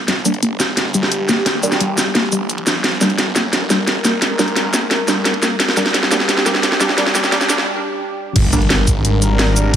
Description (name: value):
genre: dark technical drum and bass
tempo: 174 BPM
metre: 4/4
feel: straight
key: G phrygian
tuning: A4 = 440 Hz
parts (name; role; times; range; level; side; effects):
- sweeping resonant pad; sustained chords; 0.0-9.8 s; G3 to Bb4; -24 LUFS; left 1 dB; chorus, sidechain pumping
- riser and impact; sound effects; 0.1-9.7 s; none; -27 LUFS; right 1 dB; none
- soft round pluck; arpeggios; 0.1-7.6 s; G3 to G4; -23 LUFS; left 2 dB; lush chorus, sidechain pumping, digital delay
- snarling distorted saw bass; bass; 0.1-9.8 s; G1 to Bb1; -23 LUFS; equal; distortion, overdrive, high-pass filter
- drum and bass drum kit; drums; 0.1-9.8 s; crash cymbal, hi-hat, shaker, snare drum; -16 LUFS; equal; none
- electronic kick drum; drums; 0.1-9.8 s; none; -18 LUFS; equal; none
- filtered dub chord stab; stabs; 0.3-8.6 s; G3 to D4; -23 LUFS; right 2 dB; chorus, digital delay
room: moderate lush hall reverb, RT60 2.1 s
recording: high-pass filter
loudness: -14 LUFS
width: side -9 dB against mid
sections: 0.0-8.4 A section; 8.4-9.8 B section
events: build-up 0.0-8.4; drum fill 0.0-7.7; filter sweep on analog synth pad 0.0-8.4; filter sweep on synth pluck 0.0-8.4; filter sweep on synth stab 0.0-8.4; break 7.7-8.4; drop 8.4-9.8; impact 8.4-9.7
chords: 0.0 Gm